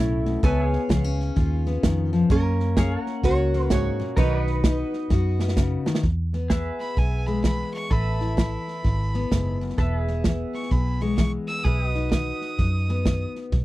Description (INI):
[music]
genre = honky-tonk and classic country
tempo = 128 BPM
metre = 4/4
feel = swing 64% on 8ths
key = E major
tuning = A4 = 440 Hz
[part]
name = lap resonator guitar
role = second line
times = 0.0-5.5 s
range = C#4 to G#5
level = -28 LUFS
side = right 5 dB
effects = none
[part]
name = picked steel-string acoustic guitar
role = accompaniment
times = 0.0-13.6 s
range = E2 to F#4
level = -28 LUFS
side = left 4 dB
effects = none
[part]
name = pedal steel guitar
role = sustained chords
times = 0.0-13.6 s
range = F#4 to F#5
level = -34 LUFS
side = right 1 dB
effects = lush chorus
[part]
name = vintage muted fingered electric bass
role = bass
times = 0.0-13.6 s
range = E1 to F#2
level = -24 LUFS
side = equal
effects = none
[part]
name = natural country drum kit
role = drums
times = 0.3-13.6 s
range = hi-hat, kick drum, snare drum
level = -24 LUFS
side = right 1 dB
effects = none
[part]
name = clear fiddle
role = melody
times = 6.8-13.3 s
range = G#5 to E6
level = -32 LUFS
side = right 2 dB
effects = none
[sound]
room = little or no reverb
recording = dry, close 1970s-style studio recording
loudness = -21 LUFS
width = side -16 dB against mid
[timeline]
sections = 0.0-6.0 A section; 6.0-13.6 B section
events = resonator guitar played with a steel bar solo 0.0-6.0; drum fill 5.1-6.0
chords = 0.4 C#7; 2.3 F#; 4.2 B; 6.0 E; 7.9 Asus2; 9.8 E; 11.7 B